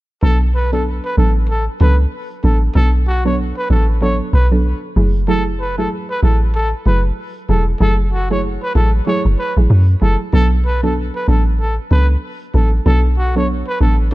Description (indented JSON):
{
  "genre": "afrobeats",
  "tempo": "95 BPM",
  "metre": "4/4",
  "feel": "swing 58% on 16ths",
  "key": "unclear",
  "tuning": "A4 = 440 Hz",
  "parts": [
    { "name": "breathy trumpet", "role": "melody", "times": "0.2-14.0 s", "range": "F#4 to C#5", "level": "-22 LUFS", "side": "equal", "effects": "ping-pong delay" },
    { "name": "soft round pluck", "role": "accompaniment", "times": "0.2-14.1 s", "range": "F#3 to A4", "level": "-21 LUFS", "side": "right 2 dB", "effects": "chorus" },
    { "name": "deep log drum bass", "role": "bass", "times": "0.2-14.1 s", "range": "E1 to F#2", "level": "-14 LUFS", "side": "equal", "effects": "none" }
  ],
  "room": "small room ambience",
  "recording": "dark, warm production",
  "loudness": "-13 LUFS",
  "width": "side -18 dB against mid",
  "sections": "0.2-14.1 A section",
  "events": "none",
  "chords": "0.2 Bm7; 5.0 F#m9; 10.3 Bm7"
}